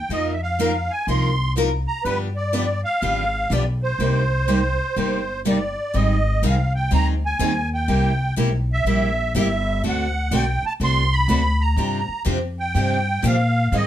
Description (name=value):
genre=acoustic string swing (jazz manouche)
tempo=123 BPM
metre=4/4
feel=swing 64% on 8ths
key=C minor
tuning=A4 = 440 Hz
part: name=musette accordion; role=melody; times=0.0-13.9 s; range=B4 to C6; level=-23 LUFS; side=right 2 dB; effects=none
part: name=upright bass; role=bass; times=0.0-13.9 s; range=G1 to Bb2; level=-22 LUFS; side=left 1 dB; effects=none
part: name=picked steel-string acoustic guitar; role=accompaniment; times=0.1-13.9 s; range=C3 to Bb4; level=-26 LUFS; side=left 5 dB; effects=none
part: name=picked steel-string acoustic guitar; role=accompaniment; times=0.1-13.9 s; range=C3 to Bb4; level=-26 LUFS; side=right 6 dB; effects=none
room=light reverb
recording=close, detailed microphones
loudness=-18 LUFS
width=side -11 dB against mid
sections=0.0-5.9 A section; 5.9-13.9 B section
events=none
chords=0.1 F7sus4; 2.0 G7; 4.0 Cm7; 5.9 Abmaj7; 7.9 C7; 9.8 D7; 11.8 G7sus4